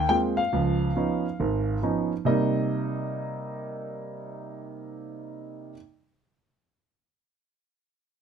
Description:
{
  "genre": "solo jazz",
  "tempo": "139 BPM",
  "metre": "4/4",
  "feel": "swing 65% on 8ths",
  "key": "C minor",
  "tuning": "A4 = 440 Hz",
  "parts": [
    { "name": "warm concert grand piano", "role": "solo", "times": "0.0-5.8 s", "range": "Ab1 to G5", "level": "-25 LUFS", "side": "right 1 dB", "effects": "none" }
  ],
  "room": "light reverb",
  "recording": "none",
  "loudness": "-24 LUFS",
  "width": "side -7 dB against mid",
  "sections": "0.0-2.2 A section; 2.2-5.7 B section",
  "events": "none",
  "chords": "0.0 Ab69; 0.5 Db9; 2.2 Cm7",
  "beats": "0.09 | 0.52 0.95 1.38 1.81 | 2.24 2.67 3.11 3.54 | 3.97 4.40 4.83 5.26"
}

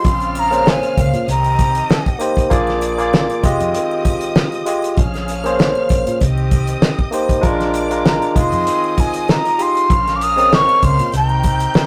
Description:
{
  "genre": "lush 1970s-style soul",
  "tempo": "97 BPM",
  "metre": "4/4",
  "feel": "swing 54% on 16ths",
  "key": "unclear",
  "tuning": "A4 = 441 Hz",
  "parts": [
    { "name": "breathy jazz flute", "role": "melody", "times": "0.0-2.2, 8.1-11.9 s", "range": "F5 to Eb6", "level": "-19 LUFS", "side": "equal", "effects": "none" },
    { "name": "rich studio violin section", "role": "second line", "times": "0.0-11.9 s", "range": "D5 to G6", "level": "-32 LUFS", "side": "equal", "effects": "none" },
    { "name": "barky tine electric piano", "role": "accompaniment", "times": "0.0-11.2 s", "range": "Ab3 to Eb5", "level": "-21 LUFS", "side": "equal", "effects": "overdrive" },
    { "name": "warm horn section", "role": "stabs", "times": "0.0-11.9 s", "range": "Db3 to Bb4", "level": "-30 LUFS", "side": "equal", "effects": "none" },
    { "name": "vintage muted fingered electric bass", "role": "bass", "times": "0.0-11.7 s", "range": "F1 to Bb2", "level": "-24 LUFS", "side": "equal", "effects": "none" },
    { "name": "damped 70s drum kit", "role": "drums", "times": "0.0-11.9 s", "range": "hi-hat, kick drum, snare drum", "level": "-19 LUFS", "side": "equal", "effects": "none" },
    { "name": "triangle", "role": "percussion", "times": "0.0-11.9 s", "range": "none", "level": "-43 LUFS", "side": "equal", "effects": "none" }
  ],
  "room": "moderate studio reverb, RT60 0.6 s",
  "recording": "rough rehearsal-room recording, tube saturation",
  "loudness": "-16 LUFS",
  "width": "mono",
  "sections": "0.0-11.9 A section",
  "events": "none",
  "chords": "0.0 Bbm9; 1.3 Cm7; 2.5 Bb7; 3.4 Fm9; 5.0 Bbm9; 6.2 Cm7; 7.4 Bb7; 8.4 Fm9; 9.9 Bbm9; 11.1 Cm7",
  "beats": "| 0.05 0.66 1.28 1.90 | 2.51 3.13 3.74 4.36 | 4.97 5.59 6.21 6.82 | 7.44 8.05 8.67 9.29 | 9.90 10.52 11.13 11.75"
}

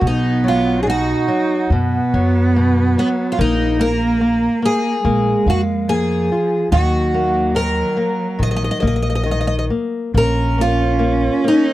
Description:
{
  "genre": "fado-style ballad",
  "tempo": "71 BPM",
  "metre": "4/4",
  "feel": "rubato",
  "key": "Eb minor",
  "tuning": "A4 = 439 Hz",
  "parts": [
    { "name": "picked twelve-string acoustic guitar", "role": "melody", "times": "0.0-11.7 s", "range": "B3 to Eb5", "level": "-19 LUFS", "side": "equal", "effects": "none" },
    { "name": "warm cello", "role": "second line", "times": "0.0-11.7 s", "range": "F3 to D#4", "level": "-20 LUFS", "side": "right 3 dB", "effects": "none" },
    { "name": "nylon-string guitar", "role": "accompaniment", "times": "0.0-11.7 s", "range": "B2 to F5", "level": "-22 LUFS", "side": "left 4 dB", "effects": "none" },
    { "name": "upright bass", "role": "bass", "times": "0.0-11.3 s", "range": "Bb1 to F#2", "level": "-19 LUFS", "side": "equal", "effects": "none" }
  ],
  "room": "light reverb",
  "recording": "dry, close 1970s-style studio recording",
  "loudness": "-15 LUFS",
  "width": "side -15 dB against mid",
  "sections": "0.0-10.1 A section; 10.1-11.7 B section",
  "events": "none",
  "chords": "0.0 B; 3.4 Bb7sus4; 5.0 Bb5; 6.7 Ebm; 10.1 Bbm",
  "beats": "| 0.02 0.87 1.71 2.55 | 3.38 4.21 5.04 5.88 | 6.71 7.55 8.40 9.27 | 10.15 11.01"
}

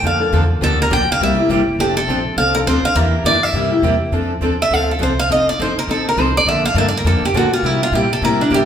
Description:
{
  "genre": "acoustic string swing (jazz manouche)",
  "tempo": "205 BPM",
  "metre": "4/4",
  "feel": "swing 59% on 8ths",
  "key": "F major from 4.1 s",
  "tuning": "A4 = 440 Hz",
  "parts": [
    { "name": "picked steel-string acoustic guitar", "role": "melody", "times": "0.0-8.7 s", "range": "D4 to G5", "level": "-17 LUFS", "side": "right 1 dB", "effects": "none" },
    { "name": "picked steel-string acoustic guitar", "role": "accompaniment", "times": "0.0-8.6 s", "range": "C3 to A4", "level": "-20 LUFS", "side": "left 4 dB", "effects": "none" },
    { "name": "picked steel-string acoustic guitar", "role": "accompaniment", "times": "0.0-8.6 s", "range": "C3 to Bb4", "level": "-23 LUFS", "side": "right 4 dB", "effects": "none" },
    { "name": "upright bass", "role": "bass", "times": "0.0-8.7 s", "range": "F1 to C3", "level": "-21 LUFS", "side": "equal", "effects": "none" }
  ],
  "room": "wet large studio reverb, RT60 1.4 s",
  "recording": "band playing live in one room",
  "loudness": "-14 LUFS",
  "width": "side -8 dB against mid",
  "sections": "0.0-4.1 A section; 4.1-8.7 B section",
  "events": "steel-string acoustic guitar solo 4.1-8.7",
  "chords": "0.0 Bbmaj7; 0.6 Gm7; 1.2 C7; 1.8 F6; 3.0 Em7b5; 3.5 C7; 4.1 F6; 5.3 F7; 6.5 Bbmaj7; 7.6 C7",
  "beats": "0.03 0.32 | 0.62 0.91 1.20 1.49 | 1.79 2.08 2.37 2.66 | 2.96 3.25 3.54 3.83 | 4.13 4.42 4.71 5.00 | 5.30 5.59 5.88 6.17 | 6.47 6.76 7.05 7.34 | 7.64 7.93 8.22 8.51"
}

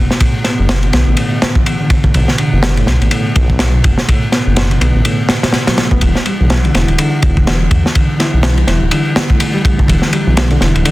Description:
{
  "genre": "breakbeat, breaks",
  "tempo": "124 BPM",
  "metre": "4/4",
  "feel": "swing 58% on 16ths",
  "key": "E minor",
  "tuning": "A4 = 440 Hz",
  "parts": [
    { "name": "reed electric piano", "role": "riff", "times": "0.0-10.9 s", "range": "A2 to E4", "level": "-16 LUFS", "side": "equal", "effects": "overdrive, fast tremolo, vintage 12-bit sampler grit, tape echo" },
    { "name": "detuned saw bass", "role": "bass", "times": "0.0-10.8 s", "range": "D1 to E2", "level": "-13 LUFS", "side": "equal", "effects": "none" },
    { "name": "crunchy breakbeat drum kit", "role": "drums", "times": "0.1-10.9 s", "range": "kick drum, ride cymbal, snare drum", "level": "-13 LUFS", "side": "equal", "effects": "none" }
  ],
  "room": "studio reverb",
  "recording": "dense, heavily limited modern master",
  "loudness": "-10 LUFS",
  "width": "side -18 dB against mid",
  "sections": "0.0-10.9 A section",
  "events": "none",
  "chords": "0.0 Bm7; 6.0 Em7",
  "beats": "| 0.21 0.70 1.18 1.66 | 2.15 2.63 3.12 3.60 | 4.08 4.57 5.05 5.53 | 6.02 6.50 6.99 7.47 | 7.95 8.44 8.92 9.40 | 9.89 10.37 10.86"
}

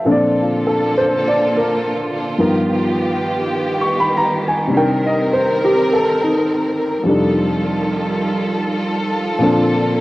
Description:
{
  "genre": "jazz ballad",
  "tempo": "51 BPM",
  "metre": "4/4",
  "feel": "swing 68% on 8ths",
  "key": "Bb major",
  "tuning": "A4 = 440 Hz",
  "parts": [
    { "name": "dark baby grand piano", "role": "accompaniment", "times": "0.0-10.0 s", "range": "F2 to Db6", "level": "-16 LUFS", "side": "equal", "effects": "cassette tape" },
    { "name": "warm symphonic string section", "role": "sustained chords", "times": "0.0-10.0 s", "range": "D3 to Bb4", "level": "-20 LUFS", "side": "right 1 dB", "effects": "cassette tape" }
  ],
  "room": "moderate studio reverb, RT60 0.5 s",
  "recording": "home recording on cassette",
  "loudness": "-15 LUFS",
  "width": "side -18 dB against mid",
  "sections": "0.0-10.0 A section",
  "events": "none",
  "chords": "0.0 Bbmaj7; 2.4 G7alt; 4.7 Cm9; 7.1 F13; 9.4 Bbmaj7",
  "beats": "| 0.04 1.21 2.38 3.55 | 4.72 5.89 7.06 8.22 | 9.39"
}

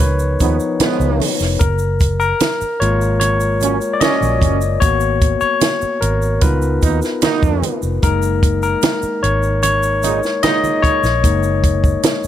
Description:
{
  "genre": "lush 1970s-style soul",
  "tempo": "75 BPM",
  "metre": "4/4",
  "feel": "straight",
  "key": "F# major",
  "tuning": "A4 = 442 Hz",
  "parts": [
    { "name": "barky tine electric piano", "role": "accompaniment", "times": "0.0-12.3 s", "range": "E#3 to D#5", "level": "-17 LUFS", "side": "moving between left 8 dB and left 1 dB", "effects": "auto-pan" },
    { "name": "vintage muted fingered electric bass", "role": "bass", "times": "0.0-12.3 s", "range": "E#1 to E#2", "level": "-19 LUFS", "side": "equal", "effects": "none" },
    { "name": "compact cocktail drum kit", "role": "drums", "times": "0.0-12.2 s", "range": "hi-hat, kick drum, snare drum", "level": "-17 LUFS", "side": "right 1 dB", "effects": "none" },
    { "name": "congas", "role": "percussion", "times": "0.0-12.2 s", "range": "none", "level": "-26 LUFS", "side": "right 5 dB", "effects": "none" },
    { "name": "tube shaker", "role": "percussion", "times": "0.0-12.3 s", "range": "none", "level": "-34 LUFS", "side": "right 11 dB", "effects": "none" },
    { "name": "clear trombone section", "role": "stabs", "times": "0.4-11.0 s", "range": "G#2 to D#4", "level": "-21 LUFS", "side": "right 9 dB", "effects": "none" }
  ],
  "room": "studio reverb",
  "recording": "none",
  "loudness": "-14 LUFS",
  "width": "side -11 dB against mid",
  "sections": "0.0-12.3 A section",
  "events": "tine electric piano solo 0.0-12.3",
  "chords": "0.0 C#9; 1.6 F#maj7; 4.8 G#m9; 6.4 C#13; 8.0 F#69",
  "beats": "0.00 0.80 | 1.61 2.41 3.21 4.01 | 4.82 5.62 6.42 7.23 | 8.03 8.83 9.63 10.44 | 11.24 12.04"
}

